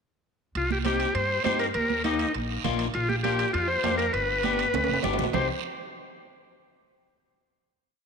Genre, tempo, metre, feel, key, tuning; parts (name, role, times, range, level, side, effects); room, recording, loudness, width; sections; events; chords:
latin, cumbia; 201 BPM; 4/4; straight; C minor; A4 = 440 Hz
combo organ; melody; 0.6-5.5 s; Eb4 to C5; -26 LUFS; left 1 dB
upright bass; bass; 0.6-5.5 s; F1 to G2; -32 LUFS; equal
guiro; percussion; 0.6-5.4 s; -38 LUFS; right 12 dB
timbales; percussion; 0.6-5.4 s; -36 LUFS; right 11 dB
congas; percussion; 0.7-5.4 s; -34 LUFS; right 11 dB
electric guitar at the edge of break-up; accompaniment; 0.8-5.5 s; Bb3 to G4; -32 LUFS; left 9 dB
wet echo chamber reverb, RT60 2.4 s; 1960s-style stereo with parts hard left and right; -24 LUFS; side -6 dB against mid
0.6-5.3 A section; 5.3-6.5 final chord
drum fill 4.7-5.3
0.6 Cm; 1.8 Eb; 2.9 Bb; 4.1 G; 5.3 Cm